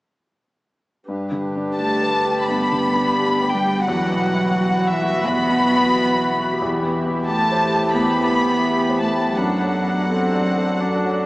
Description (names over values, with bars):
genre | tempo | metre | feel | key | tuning
neoclassical piano and strings | 87 BPM | 4/4 | uneven beats, rubato | unclear | A4 = 441 Hz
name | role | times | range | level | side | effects
clear grand piano | accompaniment | 1.1-11.3 s | E2 to D5 | -24 LUFS | left 1 dB | none
warm viola | accompaniment | 1.1-11.3 s | C4 to G4 | -27 LUFS | equal | none
pedal harmonium | sustained chords | 1.1-11.3 s | D4 to E5 | -28 LUFS | equal | none
warm chamber violin section | melody | 1.8-11.3 s | E5 to B5 | -21 LUFS | left 1 dB | none
warm cello | second line | 1.8-11.3 s | E3 to B3 | -22 LUFS | right 1 dB | none
room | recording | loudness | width
wet cathedral reverb, RT60 6.5 s | in a vast, echoing space, small speaker sound | -17 LUFS | side -19 dB against mid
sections
1.1-11.3 A section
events
none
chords
1.1 G; 3.9 Esus2; 6.6 C/E; 9.4 D/F#